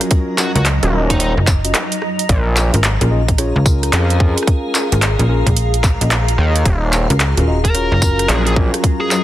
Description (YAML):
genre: glitch hop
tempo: 110 BPM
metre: 4/4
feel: swing 64% on 16ths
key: Eb minor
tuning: A4 = 439 Hz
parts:
  - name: mellow tine electric piano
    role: stabs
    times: 0.0-9.2 s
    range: Db4 to Eb5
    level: -22 LUFS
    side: equal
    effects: vintage 12-bit sampler grit, sidechain pumping, tape echo
  - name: drum and bass drum kit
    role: drums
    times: 0.0-9.2 s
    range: handclaps, hi-hat, rim click, tambourine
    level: -19 LUFS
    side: right 1 dB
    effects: overdrive
  - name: granular cloud pad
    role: texture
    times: 0.0-9.2 s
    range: Gb3 to Bb5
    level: -24 LUFS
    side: equal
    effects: built-in reverb, sidechain pumping
  - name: electronic kick drum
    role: drums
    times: 0.1-9.0 s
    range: none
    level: -15 LUFS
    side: equal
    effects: overdrive
  - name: bluesy overdriven lead guitar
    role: melody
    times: 0.4-1.3, 7.6-9.2 s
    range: Eb4 to Bb4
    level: -22 LUFS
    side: equal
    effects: distortion, tape echo
  - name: slap-like FM bass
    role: bass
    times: 0.6-8.3 s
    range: Eb1 to Db2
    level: -16 LUFS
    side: equal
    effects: none
  - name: gritty driven synth bass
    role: bass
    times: 0.8-8.7 s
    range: Eb1 to F2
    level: -15 LUFS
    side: equal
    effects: tube saturation
room: light reverb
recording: dense, heavily limited modern master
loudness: -13 LUFS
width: side -14 dB against mid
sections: 0.0-9.2 A section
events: none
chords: 0.0 Ebm7; 2.3 Bbm7; 6.7 Ebm7